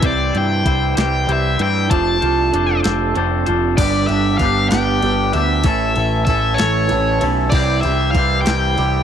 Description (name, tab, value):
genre	indie rock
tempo	64 BPM (dotted quarters)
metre	6/8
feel	straight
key	G mixolydian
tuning	A4 = 439 Hz
part	overdriven electric guitar	melody	0.0-9.0 s	C#5 to A5	-21 LUFS	left 1 dB	spring reverb
part	electric guitar through a small old amp	riff	0.0-9.0 s	G2 to A4	-21 LUFS	right 9 dB	wide subtle chorus
part	twangy electric guitar	riff	0.0-9.0 s	A2 to C5	-22 LUFS	left 11 dB	none
part	growling picked electric bass	bass	0.0-9.0 s	F1 to G2	-20 LUFS	equal	overdrive
part	crisp 8-bit digital drum machine	drums	0.0-8.9 s	crash cymbal, hi-hat, kick drum, ride cymbal, snare drum	-20 LUFS	equal	overdrive
room	digital ambience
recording	dry, close 1970s-style studio recording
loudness	-14 LUFS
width	side -8 dB against mid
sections	0.0-3.8 A section; 3.8-9.0 B section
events	none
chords	0.0 C; 1.9 F6; 3.8 G; 5.6 A; 7.5 C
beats	| 0.03 0.96 | 1.90 2.84 | 3.77 4.71 | 5.65 6.58 | 7.52 8.46